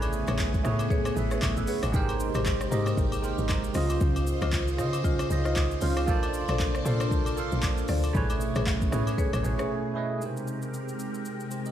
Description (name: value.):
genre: amapiano.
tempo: 116 BPM.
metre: 4/4.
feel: swing 58% on 16ths.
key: Ab major.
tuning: A4 = 441 Hz.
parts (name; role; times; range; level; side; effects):
bell-like tine electric piano; accompaniment; 0.0-11.7 s; Db3 to G#5; -32 LUFS; right 4 dB; phaser.
phased string machine; sustained chords; 0.0-11.7 s; B2 to C5; -34 LUFS; left 1 dB; ensemble chorus, phaser, sidechain pumping.
deep log drum bass; bass; 0.0-9.6 s; G#1 to Db3; -29 LUFS; equal; none.
deep house drum kit; drums; 0.0-11.7 s; handclaps, hi-hat, kick drum, rim click, shaker; -30 LUFS; equal; none.
agogo bells and woodblock; percussion; 0.0-9.4 s; none; -40 LUFS; left 5 dB; none.
marimba with medium mallets; stabs; 0.3-9.7 s; F4 to Eb5; -35 LUFS; left 4 dB; ping-pong delay.
room: little or no reverb.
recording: played on a big sound system in a bare room, stone room reverb.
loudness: -25 LUFS.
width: side -10 dB against mid.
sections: 0.0-10.2 A section; 10.2-11.7 B section.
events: drop 0.0-10.2; break 9.7-10.2.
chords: 0.0 Amaj9; 1.9 Abmaj9; 3.8 Dbmaj9; 6.1 Bbmaj9; 8.1 Amaj9; 10.2 Abmaj9.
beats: 0.39 0.91 1.42 | 1.94 2.46 2.98 3.49 | 4.01 4.53 5.04 5.56 | 6.08 6.60 7.11 7.63 | 8.15 8.66 9.18 9.70 | 10.22 10.73 11.25.